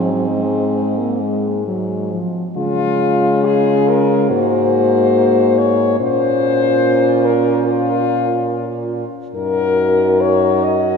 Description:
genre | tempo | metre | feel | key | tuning
classical, lyrical piece for horn quartet | 70 BPM | 4/4 | rubato | Db major | A4 = 444 Hz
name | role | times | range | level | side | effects
clear French horn | melody | 0.0-11.0 s | F4 to Eb5 | -18 LUFS | left 7 dB | none
clear French horn | second line | 0.0-11.0 s | C4 to Gb4 | -21 LUFS | right 7 dB | none
dark French horn | accompaniment | 0.0-11.0 s | F3 to Eb4 | -20 LUFS | left 1 dB | none
warm French horn | bass | 0.0-11.0 s | Gb2 to Db3 | -20 LUFS | right 2 dB | none
room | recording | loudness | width
wet cathedral reverb, RT60 4.3 s | dark, warm production | -13 LUFS | side -6 dB against mid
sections
0.0-2.6 A section; 2.6-11.0 B section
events
none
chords
0.0 Ab; 2.6 Db; 4.3 Ab9; 6.0 Bbm; 9.4 Ebm/Gb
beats
0.75 1.66 | 2.57 3.44 4.30 5.15 | 6.00 6.84 7.67 8.51 | 9.36 10.21

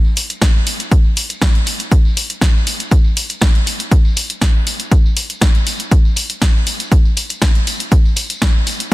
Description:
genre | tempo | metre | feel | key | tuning
house | 120 BPM | 4/4 | straight | none | none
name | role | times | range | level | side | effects
tambourine | percussion | 0.0-8.9 s | none | -30 LUFS | equal | sidechain pumping on perc, low-pass filter on perc
punchy analog drum machine | drums | 0.2-8.9 s | hi-hat, snare drum | -19 LUFS | left 1 dB | none
electronic kick drum | drums | 0.4-8.9 s | none | -12 LUFS | equal | none
room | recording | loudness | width
little or no reverb | dense, heavily limited modern master | -12 LUFS | side -19 dB against mid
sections
0.0-8.9 A section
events
none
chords
none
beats
0.42 0.92 1.42 | 1.92 2.42 2.92 3.42 | 3.92 4.42 4.92 5.42 | 5.92 6.42 6.92 7.42 | 7.92 8.42 8.92

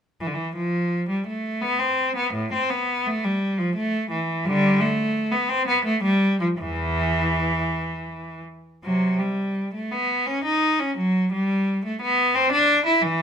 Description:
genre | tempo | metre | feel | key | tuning
classical, baroque-style suite movement for unaccompanied cello | 79-90 BPM | 3/4 | rubato | unclear | A4 = 440 Hz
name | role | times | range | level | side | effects
clear cello | solo | 0.2-13.2 s | E2 to E4 | -20 LUFS | equal | none
room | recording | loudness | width
moderate stone room reverb, RT60 0.9 s | minimal, uncompressed stereo recording | -20 LUFS | side -8 dB against mid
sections
0.2-13.2 A section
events
none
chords
none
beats
| 0.20 0.92 1.62 | 2.34 3.07 3.76 | 4.46 5.14 5.85 | 6.59 7.34 8.09 | 8.84 9.56 10.28 | 10.98 11.67 12.36 | 13.03

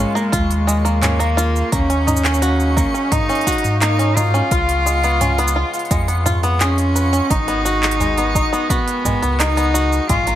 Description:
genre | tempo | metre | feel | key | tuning
folktronica | 86 BPM | 4/4 | straight | G# dorian | A4 = 437 Hz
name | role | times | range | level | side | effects
rich cello | melody | 0.0-10.4 s | G#3 to E#4 | -20 LUFS | left 1 dB | vintage 12-bit sampler grit, tape echo
accordion | sustained chords | 0.0-10.4 s | C#3 to F#4 | -29 LUFS | left 1 dB | light tremolo tuning, vintage 12-bit sampler grit
bluegrass banjo | arpeggios | 0.0-10.4 s | G#3 to B4 | -22 LUFS | right 1 dB | vintage 12-bit sampler grit
warm sub bass | bass | 0.0-10.4 s | G#1 to G#2 | -19 LUFS | equal | none
backwards swelling texture | texture | 0.0-10.4 s | C#6 | -31 LUFS | right 1 dB | built-in reverb
organic electronic drum kit | drums | 0.2-10.4 s | handclaps, hi-hat, shaker, toms | -23 LUFS | right 1 dB | none
electronic kick drum | drums | 0.3-10.2 s | none | -21 LUFS | equal | none
room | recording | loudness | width
digital ambience | none | -15 LUFS | side -12 dB against mid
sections
0.0-10.4 A section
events
none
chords
0.0 A#m7; 1.7 D#m7; 4.5 C#7; 7.3 G#m7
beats
0.33 1.03 | 1.72 2.42 3.12 3.82 | 4.51 5.21 5.91 6.61 | 7.30 8.00 8.70 9.40 | 10.10

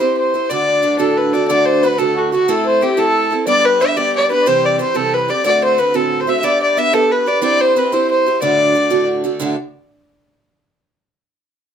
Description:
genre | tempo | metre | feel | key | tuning
celtic folk, Celtic jig | 121 BPM (dotted quarters) | 6/8 | straight | D mixolydian | A4 = 438 Hz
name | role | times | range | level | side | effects
dark fiddle | melody | 0.0-9.1 s | F#4 to E5 | -15 LUFS | left 1 dB | none
mellow accordion | second line | 0.0-9.0 s | F#4 to E5 | -21 LUFS | left 3 dB | none
picked acoustic archtop guitar | accompaniment | 0.0-9.6 s | D2 to C5 | -19 LUFS | right 5 dB | none
room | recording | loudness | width
moderate studio reverb, RT60 0.6 s | none | -13 LUFS | side -8 dB against mid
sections
0.0-1.5 A section; 1.5-9.4 A section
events
none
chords
0.5 D; 2.5 Am; 3.5 G; 4.5 C; 5.5 D7; 6.4 G/B; 7.4 C; 8.4 D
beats
0.00 | 0.49 0.99 | 1.49 1.98 | 2.48 2.98 | 3.47 3.97 | 4.46 4.96 | 5.45 5.95 | 6.44 6.94 | 7.43 7.92 | 8.42 8.91 | 9.40

